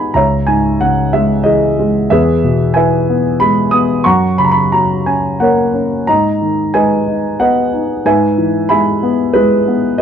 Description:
classical, lyrical solo piano; 92 BPM; 3/4; rubato; A4 = 441 Hz
dark concert grand piano; solo; 0.0-10.0 s; C#2 to D#6; -11 LUFS; equal
moderate small room reverb, RT60 0.5 s; dark, warm production; -11 LUFS; side -8 dB against mid
0.0-10.0 A section
0.1 C#m; 2.1 E; 4.1 F#; 6.1 G#m; 8.1 E/G#
| 0.15 0.81 1.46 | 2.11 2.76 3.41 | 4.06 4.72 5.40 | 6.08 6.74 7.39 | 8.05 8.70 9.35 | 9.99

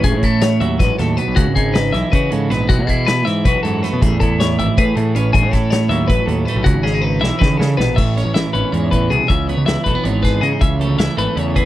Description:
math rock and midwest emo; 318 BPM (eighths); 7/8; straight; A lydian; A4 = 444 Hz
twelve-string electric guitar; accompaniment; 0.0-11.7 s; F#2 to B4; -19 LUFS; right 5 dB
twelve-string electric guitar; arpeggios; 0.0-11.7 s; F#4 to E5; -20 LUFS; left 6 dB
fuzz picked electric bass; bass; 0.0-11.7 s; G#1 to C#3; -19 LUFS; equal; overdrive
loose indie drum kit; drums; 0.0-11.6 s; crash cymbal, hi-hat, kick drum, snare drum; -18 LUFS; equal
little or no reverb; dry, close 1970s-style studio recording; -14 LUFS; side -14 dB against mid
0.0-8.0 A section; 8.0-11.7 B section
drum fill 6.8-8.0
0.0 F#m7/A; 1.4 C#m9; 2.7 B7sus4; 4.0 Amaj7; 5.3 F#m7/A; 6.7 C#m9; 8.0 Amaj7; 9.3 C#m9; 10.6 Amaj7
| 0.04 0.23 0.42 0.61 0.80 0.99 1.18 | 1.37 1.56 1.75 1.94 2.12 2.31 2.50 | 2.69 2.88 3.07 3.26 3.45 3.64 3.83 | 4.01 4.20 4.39 4.58 4.77 4.96 5.15 | 5.33 5.52 5.71 5.90 6.09 6.28 6.47 | 6.65 6.84 7.03 7.22 7.41 7.60 7.78 | 7.97 8.16 8.35 8.54 8.73 8.91 9.10 | 9.29 9.48 9.67 9.86 10.05 10.24 10.42 | 10.61 10.80 10.99 11.18 11.37 11.56

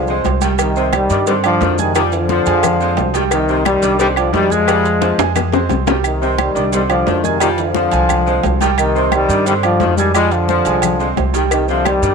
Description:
latin, salsa; 176 BPM; 4/4; straight; C minor; A4 = 439 Hz
clear trombone section; melody; 0.0-12.1 s; C3 to Ab3; -17 LUFS; left 3 dB
upright bass; bass; 0.0-12.1 s; C2 to G2; -20 LUFS; equal
clear saxophone section; second line; 0.1-12.1 s; C3 to Ab3; -23 LUFS; left 11 dB
clear concert grand piano; accompaniment; 0.1-12.1 s; F3 to Ab6; -20 LUFS; right 13 dB
congas; percussion; 0.1-12.1 s; -26 LUFS; left 14 dB
maracas; percussion; 0.1-12.1 s; -29 LUFS; right 15 dB
cowbell and bongos; percussion; 0.3-6.0, 11.5-12.1 s; -23 LUFS; left 13 dB
timbales and agogo bells; percussion; 0.3-12.0 s; -23 LUFS; right 15 dB
claves; percussion; 0.6-12.0 s; -26 LUFS; left 16 dB
moderate plate reverb, RT60 2.6 s; 1960s-style stereo with parts hard left and right; -13 LUFS; side -5 dB against mid
0.0-6.0 A section; 6.0-12.1 A section
drum fill 5.0-6.0
0.0 Cmadd9; 4.7 Fm; 6.0 Cmadd9
0.25 | 0.59 0.93 1.27 1.61 | 1.95 2.29 2.63 2.98 | 3.32 3.66 4.00 4.34 | 4.68 5.02 5.36 5.70 | 6.04 6.39 6.73 7.07 | 7.41 7.75 8.10 8.44 | 8.78 9.12 9.46 9.81 | 10.15 10.49 10.83 11.17 | 11.52 11.86

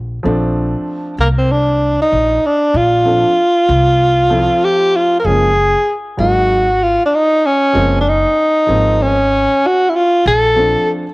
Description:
hip hop; 96 BPM; 4/4; swing 58% on 16ths; Bb major; A4 = 440 Hz
upright bass; bass; 0.0-10.7 s; Gb1 to C2; -17 LUFS; equal; tube saturation
dark grand piano; accompaniment; 0.2-11.0 s; F3 to F4; -19 LUFS; equal; cassette tape
breathy tenor saxophone; melody; 1.2-10.9 s; Bb3 to Bb4; -12 LUFS; equal; cassette tape
light reverb, studio reverb; home recording on cassette; -11 LUFS; side -23 dB against mid
0.3-11.1 A section
0.3 Bbmaj9; 5.3 Gbmaj9; 10.3 Bbmaj9
| 0.25 0.88 1.50 2.13 | 2.75 3.38 4.00 4.63 | 5.25 5.88 6.50 7.13 | 7.75 8.38 9.00 9.63 | 10.25 10.88

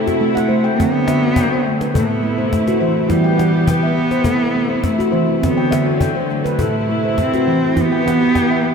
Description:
world meditative, meditative tuned percussion; 103 BPM; 4/4; straight; A4 = 438 Hz
warm cello; melody; 0.0-8.7 s; G3 to C4; -19 LUFS; right 1 dB; tape echo
rich chamber string section; sustained chords; 0.0-8.7 s; C3 to G4; -21 LUFS; left 1 dB; stereo widening
handpan; arpeggios; 0.0-8.7 s; A2 to G5; -18 LUFS; equal; tape echo
cajon; percussion; 0.1-8.5 s; -24 LUFS; left 2 dB
wet church reverb, RT60 3.0 s; -14 LUFS; side -6 dB against mid
0.8-8.7 A section
0.0 Am; 0.8 D; 1.9 Am; 3.1 Em; 4.3 Am; 5.4 D; 6.6 Am; 7.8 Em
0.21 | 0.79 1.37 1.95 2.53 | 3.11 3.69 4.27 4.85 | 5.43 6.01 6.59 7.17 | 7.76 8.34

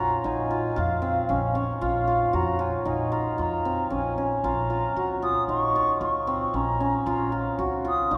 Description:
contemporary instrumental, chamber music in an uneven meter; 114 BPM; 5/4; straight; A4 = 438 Hz
mellow wooden flute; melody; 0.0-8.2 s; F5 to Eb6; -29 LUFS; equal
hammered dulcimer; arpeggios; 0.0-8.2 s; C4 to Gb4; -29 LUFS; equal
upright bass; bass; 0.0-8.2 s; Bb1 to F2; -34 LUFS; equal
wet cathedral reverb, RT60 6.0 s; recorded in a church or concert hall; -25 LUFS; mono
0.0-8.2 A section
0.0 Gb/Bb (rootless)
0.25 0.77 1.30 | 1.82 2.34 2.87 3.39 3.92 | 4.44 4.96 5.49 6.01 6.54 | 7.07 7.59 8.12

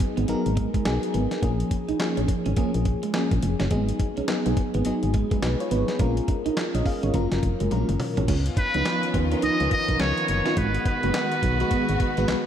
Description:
R&B, new jack swing; 105 BPM; 4/4; swing 61% on 16ths; G# dorian; A4 = 439 Hz
FM electric piano with tremolo; accompaniment; 0.0-12.5 s; E#3 to E#5; -27 LUFS; left 2 dB; phaser, shimmer reverb
electric guitar at the edge of break-up; riff; 0.0-12.3 s; F#3 to D#4; -31 LUFS; right 6 dB; analog chorus, shimmer reverb
dusty soul sampler-style drum kit; drums; 0.0-12.4 s; crash cymbal, handclaps, hi-hat, kick drum, snare drum, toms; -28 LUFS; equal
solid FM bass; bass; 0.2-12.4 s; E#1 to D#2; -26 LUFS; equal
warm studio string section; sustained chords; 8.3-12.5 s; D#3 to F#4; -29 LUFS; left 2 dB; shimmer reverb
trumpet with metal mute; melody; 8.6-12.5 s; B4 to D#5; -26 LUFS; right 1 dB; shimmer reverb
moderate lush hall reverb, RT60 1.6 s; dreamy mix soaked in reverb; -21 LUFS; side -9 dB against mid
0.0-8.3 A section; 8.3-12.5 B section
drum fill 7.7-8.3
0.0 G#m7; 1.4 A#m7; 3.7 G#m7; 6.0 A#m7; 7.1 F#maj7; 8.3 C#13; 10.6 G#m7
0.28 0.85 | 1.43 2.00 2.57 3.14 | 3.71 4.28 4.86 5.43 | 6.00 6.57 7.14 7.71 | 8.28 8.86 9.43 10.00 | 10.57 11.14 11.71 12.28

